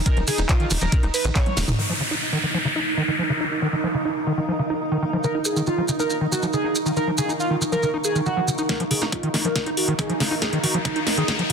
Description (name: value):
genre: psychedelic trance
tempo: 139 BPM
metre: 4/4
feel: straight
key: unclear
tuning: A4 = 440 Hz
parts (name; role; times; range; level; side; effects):
- pulsing gated texture; sustained chords; 0.0-11.5 s; Eb4; -29 LUFS; right 3 dB; chorus, built-in reverb, sidechain pumping
- overdriven synth lead; melody; 0.1-1.6, 5.2-11.5 s; Eb4 to Db5; -27 LUFS; right 1 dB; chorus, phaser, sidechain pumping, ping-pong delay
- overdriven acid bass; riff; 0.1-11.5 s; Db3 to Eb4; -26 LUFS; equal; auto-pan, sidechain pumping, dub echo
- drum and bass drum kit; drums; 0.1-1.8, 8.7-11.5 s; handclaps, hi-hat, ride cymbal, snare drum, toms; -26 LUFS; equal; none
- electronic kick drum; drums; 0.1-1.4, 8.7-11.4 s; none; -22 LUFS; equal; high-pass filter on kick, high-pass filter on room
- maracas; percussion; 0.1-1.8, 5.2-8.7 s; none; -29 LUFS; right 2 dB; none
- tight sequencer bass; bass; 0.2-1.7, 8.8-11.5 s; Eb1 to Bb1; -27 LUFS; equal; tube saturation, high-pass filter
- downlifter and riser; sound effects; 1.8-5.2, 9.8-11.5 s; none; -27 LUFS; equal; none
- granular cloud pad; texture; 2.6-11.5 s; Eb4 to Eb6; -31 LUFS; equal; built-in reverb, sidechain pumping
room: moderate lush hall reverb, RT60 2.2 s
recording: dense, heavily limited modern master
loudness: -20 LUFS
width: side -6 dB against mid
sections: 0.0-1.8 A section; 1.8-8.7 B section; 8.7-11.5 C section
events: drop 0.0-1.8; drum fill 1.4-1.8, 8.7-11.5; band accent 1.6; build-up 8.7-11.5; filter sweep on analog synth lead 8.7-11.5; riser 9.8-11.5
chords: 0.0 Eb5